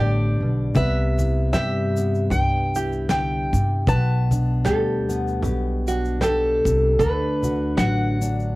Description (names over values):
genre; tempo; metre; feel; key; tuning
acoustic folk duo or small band; 77 BPM; 4/4; swing 56% on 8ths; G major; A4 = 440 Hz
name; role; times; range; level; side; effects
picked steel-string acoustic guitar; melody; 0.0-8.6 s; A4 to A5; -25 LUFS; equal; cassette tape
fingerpicked steel-string acoustic guitar; accompaniment; 0.0-8.6 s; G2 to F#4; -25 LUFS; left 1 dB; cassette tape
open-back banjo; arpeggios; 0.0-8.5 s; F#4 to B4; -30 LUFS; right 4 dB; cassette tape
upright bass; bass; 0.0-8.5 s; A1 to G2; -23 LUFS; equal; none
cajon; percussion; 0.7-8.3 s; none; -26 LUFS; left 1 dB; none
soft brush drum kit; drums; 0.8-8.4 s; hi-hat, kick drum, snare drum; -28 LUFS; equal; cassette tape
egg shaker; percussion; 0.8-8.5 s; none; -40 LUFS; left 6 dB; none
nylon-string guitar; second line; 4.7-6.0 s; G4 to A4; -27 LUFS; right 1 dB; cassette tape
room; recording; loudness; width
light reverb; home recording on cassette; -19 LUFS; side -20 dB against mid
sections
0.0-8.6 A section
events
none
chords
0.0 Gadd9; 0.8 Cmaj7; 3.9 Gadd9/B; 7.0 D